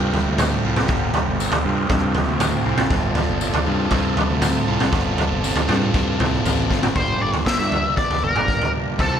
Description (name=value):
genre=psychedelic rock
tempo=119 BPM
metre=4/4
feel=straight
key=G minor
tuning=A4 = 440 Hz
part: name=combo organ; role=sustained chords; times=0.0-9.2 s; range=E3 to A5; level=-29 LUFS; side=right 4 dB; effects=none
part: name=fuzz guitar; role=riff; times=0.0-9.2 s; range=G2 to F4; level=-24 LUFS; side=left 1 dB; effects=distortion, phaser
part: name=fuzz fingered electric bass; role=bass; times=0.0-9.2 s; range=G1 to G2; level=-25 LUFS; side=equal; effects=overdrive
part: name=raw garage drum kit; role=drums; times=0.1-9.1 s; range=kick drum, snare drum, toms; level=-21 LUFS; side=right 1 dB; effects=none
part: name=tambourine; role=percussion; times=0.4-6.6 s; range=none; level=-34 LUFS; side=left 13 dB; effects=none
part: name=octave-fuzz lead guitar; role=melody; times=7.0-9.2 s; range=A4 to E5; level=-22 LUFS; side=left 2 dB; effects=wah, distortion, analog delay
room=light reverb, studio ambience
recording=none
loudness=-17 LUFS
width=side -8 dB against mid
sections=0.0-7.0 A section; 7.0-9.2 B section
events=none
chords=0.0 Fadd9/G; 7.0 Gm7